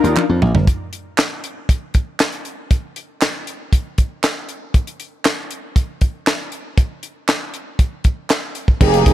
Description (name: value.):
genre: early-eighties boogie funk.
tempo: 118 BPM.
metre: 4/4.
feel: straight.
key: unclear.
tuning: A4 = 440 Hz.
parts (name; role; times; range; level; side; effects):
mellow synth brass; accompaniment; 0.0-0.2, 8.8-9.1 s; Bb3 to Bb4; -16 LUFS; equal; chorus, phaser.
string machine, violins; sustained chords; 0.0-0.7, 8.8-9.1 s; Eb3 to G5; -32 LUFS; right 1 dB; none.
slap bass; bass; 0.0-0.6, 8.8-9.1 s; F1 to F2; -16 LUFS; equal; none.
tight funk drum kit; drums; 0.0-9.1 s; crash cymbal, handclaps, hi-hat, kick drum, snare drum, toms; -16 LUFS; equal; none.
group handclap; percussion; 0.2-8.4 s; none; -25 LUFS; right 8 dB; none.
room: little or no reverb.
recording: none.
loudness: -17 LUFS.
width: side -13 dB against mid.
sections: 0.7-8.8 A section.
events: drum fill 0.2-0.7.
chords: 0.0 Cm11 (rootless); 0.7 N.C..